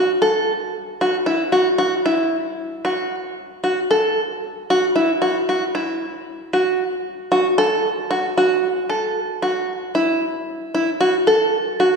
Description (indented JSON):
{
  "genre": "progressive instrumental, progressive",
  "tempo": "114 BPM",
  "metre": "7/4",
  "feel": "straight",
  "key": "F# minor",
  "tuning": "A4 = 439 Hz",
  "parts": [
    { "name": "open-back banjo", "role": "solo", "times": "0.0-11.9 s", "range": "E4 to A4", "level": "-17 LUFS", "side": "equal", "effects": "none" }
  ],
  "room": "wet concert hall reverb, RT60 2.3 s",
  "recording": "recorded in a church or concert hall, studio reverb",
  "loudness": "-17 LUFS",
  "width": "side -4 dB against mid",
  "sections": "0.0-7.6 A section; 7.6-12.0 A section",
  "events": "none",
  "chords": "none"
}